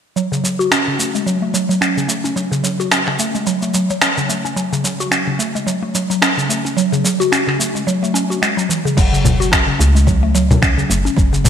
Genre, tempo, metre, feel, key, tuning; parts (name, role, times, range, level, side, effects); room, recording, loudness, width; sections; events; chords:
organic downtempo; 109 BPM; 4/4; swing 57% on 16ths; F# minor; A4 = 440 Hz
mallet-like synth pluck; arpeggios; 0.2-11.5 s; C#3 to F#4; -17 LUFS; equal; chorus, phaser, ping-pong delay
dusty soul sampler-style drum kit; drums; 0.2-11.5 s; congas, crash cymbal, finger snaps, shaker; -18 LUFS; left 1 dB; gated reverb
woody FM bass; bass; 9.0-11.5 s; F#1 to C#2; -16 LUFS; equal
electronic kick drum; drums; 9.0-11.3 s; -16 LUFS; equal
wet lush hall reverb, RT60 2.1 s; bright 1980s-style digital production; -14 LUFS; side -8 dB against mid
0.2-9.0 A section; 9.0-11.5 B section
filter sweep on synth pluck 0.2-9.0
0.2 F#m